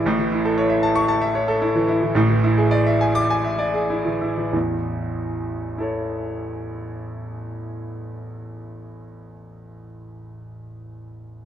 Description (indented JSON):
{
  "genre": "classical, virtuoso piano study",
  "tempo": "90-120 BPM",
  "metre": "4/4",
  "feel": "rubato",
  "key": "A major",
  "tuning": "A4 = 443 Hz",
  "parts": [
    { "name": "warm grand piano", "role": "solo", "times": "0.0-11.5 s", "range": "A1 to D6", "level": "-21 LUFS", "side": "equal", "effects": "none" }
  ],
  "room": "moderate recital hall reverb, RT60 1.4 s",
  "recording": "close, detailed microphones",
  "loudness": "-19 LUFS",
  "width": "side -10 dB against mid",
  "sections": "0.0-4.5 A section; 4.5-9.5 B section",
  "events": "slowing down 0.0-4.5",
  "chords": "0.1 A; 2.2 E7/A; 4.5 A",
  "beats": "| 0.07 0.58 1.09 1.62 | 2.16 2.71 3.29 3.90 | 4.54 5.17 5.79 6.42 | 7.04 7.66 8.29 8.91"
}